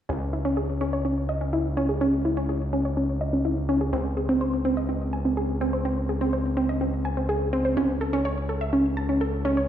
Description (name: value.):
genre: techno.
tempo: 125 BPM.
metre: 4/4.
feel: straight.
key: C# harmonic minor.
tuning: A4 = 442 Hz.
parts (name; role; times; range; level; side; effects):
wide unison pluck; arpeggios; 0.1-9.6 s; B#3 to A5; -24 LUFS; equal; ping-pong delay.
gritty driven synth bass; bass; 0.1-9.7 s; C#2; -27 LUFS; equal; none.
room: wet scoring stage reverb, RT60 1.4 s, digital ambience.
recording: played on a big sound system in a bare room, stone room reverb.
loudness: -23 LUFS.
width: side -10 dB against mid.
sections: 0.1-9.7 A section.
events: filter sweep on synth arpeggio sound 0.1-9.7.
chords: 0.1 C#m; 3.9 G#/C#; 7.8 A/C#.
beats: | 0.09 0.57 1.05 1.53 | 2.01 2.49 2.97 3.45 | 3.93 4.41 4.89 5.37 | 5.85 6.33 6.81 7.29 | 7.77 8.25 8.73 9.21.